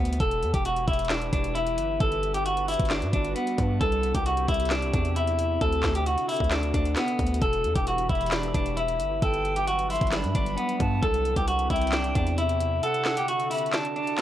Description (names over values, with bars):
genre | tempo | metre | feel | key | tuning
hip hop, trap | 133 BPM | 4/4 | half-time | E minor | A4 = 439 Hz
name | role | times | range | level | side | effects
clean electric guitar | melody | 0.0-14.2 s | B3 to A4 | -26 LUFS | equal | low-pass filter, tape echo
hard-hitting 808-style bass | bass | 0.0-12.8 s | E1 to G2 | -29 LUFS | equal | none
trap drum kit | drums | 0.1-14.2 s | handclaps, hi-hat, kick drum, snare drum | -28 LUFS | equal | overdrive
glassy FM pad | sustained chords | 0.7-14.2 s | C3 to B4 | -34 LUFS | left 2 dB | ensemble chorus, built-in reverb
breathy silver concert flute | second line | 8.1-14.2 s | F#5 to C6 | -33 LUFS | right 3 dB | none
room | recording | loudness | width
digital ambience | worn, warbling old tape, cassette tape, warbly pitch drift | -23 LUFS | side -12 dB against mid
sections
0.2-14.2 A section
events
kick muted 12.8-14.2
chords
0.2 Em; 2.0 Gmaj7; 3.8 C; 5.6 D; 7.4 Em; 9.2 Gmaj7; 11.0 C; 12.8 D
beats
| 0.20 0.65 1.10 1.55 | 2.00 2.46 2.91 3.36 | 3.81 4.26 4.71 5.16 | 5.61 6.07 6.52 6.97 | 7.42 7.87 8.32 8.77 | 9.22 9.67 10.12 10.58 | 11.03 11.48 11.93 12.38 | 12.83 13.28 13.73 14.19